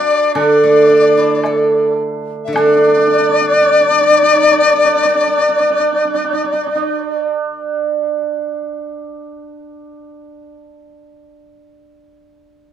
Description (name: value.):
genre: chinese traditional, Chinese chamber ensemble.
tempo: 51-61 BPM.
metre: 4/4.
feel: rubato.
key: D gong mode.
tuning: A4 = 444 Hz.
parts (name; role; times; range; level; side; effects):
dark erhu; melody; 0.0-7.3 s; D5; -19 LUFS; left 4 dB; none.
hammered dulcimer; second line; 0.0-10.5 s; D4 to B4; -20 LUFS; right 7 dB; none.
mellow dizi; second line; 0.0-7.3 s; D5 to E5; -14 LUFS; left 3 dB; none.
steel-string zither; accompaniment; 0.3-9.1 s; D3 to A4; -13 LUFS; right 2 dB; none.
woodblock; percussion; 0.4-3.1 s; none; -22 LUFS; left 2 dB; none.
room: moderate studio ambience, RT60 0.5 s.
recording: dark, warm production.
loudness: -11 LUFS.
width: side -9 dB against mid.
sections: 0.0-2.6 A section; 2.6-7.1 B section.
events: slowing down 0.0-2.6.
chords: none.